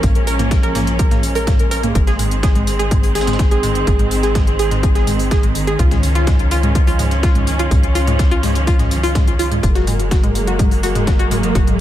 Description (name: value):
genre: melodic techno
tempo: 125 BPM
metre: 4/4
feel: straight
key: unclear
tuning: A4 = 435 Hz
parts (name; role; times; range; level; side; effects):
- dark studio string section; sustained chords; 0.0-11.8 s; Eb3 to Db4; -22 LUFS; right 2 dB; sidechain pumping
- warbly dusty pluck; arpeggios; 0.0-11.8 s; Ab3 to Bb4; -21 LUFS; left 1 dB; chorus, sidechain pumping, ping-pong delay
- tight sequencer bass; bass; 0.0-11.8 s; Gb1 to Db2; -20 LUFS; equal; sidechain pumping
- breakbeat sampler-style drum kit; drums; 0.0-11.7 s; hi-hat, snare drum, tambourine; -33 LUFS; left 1 dB; sidechain pumping on perc, high-pass filter on perc, small room ambience, high-pass filter on snare, sidechain pumping on hats, high-pass filter on hats
- electronic kick drum; drums; 0.0-11.6 s; none; -15 LUFS; equal; overdrive, small room ambience
- techno drum kit; drums; 0.0-11.8 s; hi-hat, toms; -24 LUFS; right 1 dB; overdrive, small room ambience
room: light reverb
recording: none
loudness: -13 LUFS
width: side -12 dB against mid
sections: 0.0-11.8 A section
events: none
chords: 0.0 Bbm; 2.0 Ab; 5.8 Dbadd9; 9.6 Gbadd9